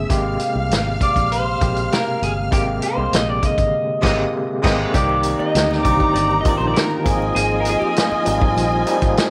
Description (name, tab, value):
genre	lush 1970s-style soul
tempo	99 BPM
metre	4/4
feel	straight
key	unclear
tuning	A4 = 440 Hz
part	warm studio string section	second line	0.0-9.3 s	Eb4 to F6	-26 LUFS	equal	none
part	overdriven tine electric piano	accompaniment	0.0-9.3 s	Cb3 to G#4	-25 LUFS	equal	fast tremolo
part	fingered electric bass	bass	0.0-9.2 s	G1 to D2	-26 LUFS	equal	none
part	vintage drum kit	drums	0.1-9.3 s	crash cymbal, hi-hat, kick drum, snare drum	-23 LUFS	equal	none
part	electric guitar through a small old amp	melody	1.0-8.0 s	G4 to Eb5	-24 LUFS	equal	phaser
part	triangle	percussion	4.9-9.3 s	none	-48 LUFS	equal	none
room	light reverb, small room reverb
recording	none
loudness	-18 LUFS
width	mono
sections	0.0-4.9 A section; 4.9-9.3 B section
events	band accent 3.7-4.9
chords	0.1 Abmaj9; 4.9 Cm9; 7.1 Ab69